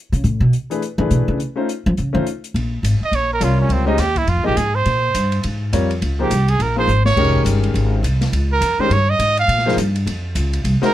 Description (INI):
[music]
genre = modal jazz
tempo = 208 BPM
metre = 4/4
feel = swing 61% on 8ths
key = Bb dorian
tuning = A4 = 441 Hz
[part]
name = upright bass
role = bass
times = 0.1-10.8 s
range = F1 to F3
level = -18 LUFS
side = equal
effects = none
[part]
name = open jazz drum kit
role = drums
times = 0.1-10.9 s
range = crash cymbal, hi-hat, kick drum, ride cymbal, snare drum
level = -28 LUFS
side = left 2 dB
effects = none
[part]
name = warm concert grand piano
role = accompaniment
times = 0.7-10.9 s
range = C3 to Eb5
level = -21 LUFS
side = left 3 dB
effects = none
[part]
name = clear trumpet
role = melody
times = 3.0-10.9 s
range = C4 to F5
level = -18 LUFS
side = right 4 dB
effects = none
[sound]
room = little or no reverb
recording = close, detailed microphones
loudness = -15 LUFS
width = side -13 dB against mid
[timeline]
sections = 0.0-2.5 A section; 2.5-10.9 A section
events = upright bass solo 0.0-2.5; trumpet solo 2.5-10.9; drum fill 6.9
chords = 0.0 Bm9; 1.4 F7b13; 2.5 Bbm9